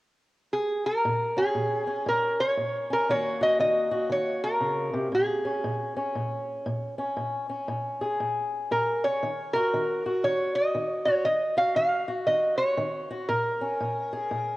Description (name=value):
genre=acoustic country blues, solo or duo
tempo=118 BPM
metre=4/4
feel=swing 62% on 8ths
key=Bb minor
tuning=A4 = 440 Hz
part: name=lap resonator guitar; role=melody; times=0.5-14.6 s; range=Ab4 to F5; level=-25 LUFS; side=equal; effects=cassette tape
part: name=fingerpicked swing-style acoustic guitar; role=accompaniment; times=1.0-14.6 s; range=Bb2 to Ab4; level=-30 LUFS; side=left 1 dB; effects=cassette tape
room=moderate lush hall reverb, RT60 2.6 s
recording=home recording on cassette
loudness=-24 LUFS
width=side -18 dB against mid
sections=0.0-1.0 A section; 1.0-14.6 B section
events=none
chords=0.0 N.C.; 1.0 Bbm7; 3.1 Ebm7; 5.1 Bbm7; 9.2 Ebm7; 13.3 Bbm7